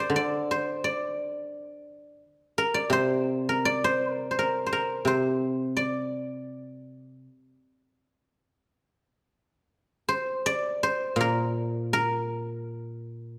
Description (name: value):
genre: chinese traditional, Chinese solo plucked strings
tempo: 69-87 BPM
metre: 4/4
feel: rubato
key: unclear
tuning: A4 = 440 Hz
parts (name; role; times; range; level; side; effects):
- guzheng; solo; 0.0-13.4 s; Bb2 to D5; -28 LUFS; equal; none
room: moderate recital hall reverb, RT60 1.6 s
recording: none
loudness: -28 LUFS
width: mono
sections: 0.0-8.9 A section; 8.9-13.4 B section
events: none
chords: none